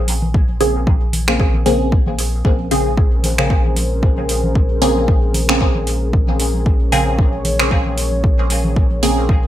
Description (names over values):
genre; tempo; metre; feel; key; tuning
dub techno; 114 BPM; 4/4; swing 56% on 16ths; Bb minor; A4 = 440 Hz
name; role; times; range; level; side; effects
soft dub sub bass; bass; 0.0-9.5 s; Bb1; -20 LUFS; equal; sidechain pumping
deep house drum kit; drums; 0.1-9.1 s; finger snaps, hi-hat; -22 LUFS; right 1 dB; overdrive, gated reverb
congas; percussion; 0.1-9.4 s; none; -28 LUFS; equal; sidechain pumping on perc, dub echo
electronic kick drum; drums; 0.3-9.4 s; none; -16 LUFS; equal; overdrive
filtered dub chord stab; stabs; 0.6-9.2 s; Db3 to Ab4; -20 LUFS; equal; phaser, sidechain pumping, dub echo
dark analog pad; sustained chords; 2.9-9.5 s; Db4 to Db5; -24 LUFS; left 1 dB; chorus, sidechain pumping
room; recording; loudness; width
light reverb; bright 1980s-style digital production; -14 LUFS; side -12 dB against mid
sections
0.0-9.5 A section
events
none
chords
0.0 Bbm9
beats
| 0.34 0.87 1.40 1.92 | 2.45 2.98 3.50 4.03 | 4.55 5.08 5.61 6.13 | 6.66 7.18 7.71 8.24 | 8.76 9.29